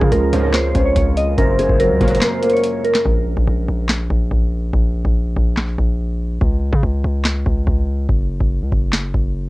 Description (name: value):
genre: hip hop, trap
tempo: 143 BPM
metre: 4/4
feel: half-time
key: unclear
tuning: A4 = 440 Hz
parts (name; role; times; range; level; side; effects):
- glassy digital keys; melody; 0.0-3.0 s; Ab4 to Eb5; -20 LUFS; right 2 dB; chorus, low-pass filter, cassette tape
- felt-muted upright piano; accompaniment; 0.0-3.1 s; Gb2 to Db4; -22 LUFS; right 2 dB; low-pass filter, cassette tape
- deep dark ambient pad; sustained chords; 0.0-3.0 s; Db3 to Bb4; -29 LUFS; right 1 dB; chorus, built-in reverb, cassette tape
- distorted 808-style bass; bass; 0.0-9.5 s; Gb1 to Db3; -19 LUFS; equal; distortion
- booming analog drum machine; drums; 0.0-9.3 s; handclaps, hi-hat, kick drum, snare drum; -18 LUFS; equal; vintage 12-bit sampler grit, cassette tape
- sync-sweep polysynth; stabs; 0.3-2.2 s; Db2 to Gb3; -26 LUFS; left 1 dB; chorus, cassette tape, analog delay
- gliding portamento lead; second line; 1.4-3.0 s; Bb4 to C5; -20 LUFS; left 2 dB; chorus, cassette tape, analog delay
room: light reverb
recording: home recording on cassette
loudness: -15 LUFS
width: side -19 dB against mid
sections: 0.0-3.1 A section; 3.1-9.5 B section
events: kick muted 2.2-3.1; break 3.1-9.5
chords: 0.0 Db; 1.4 Gb; 3.1 N.C.; 8.1 Gb5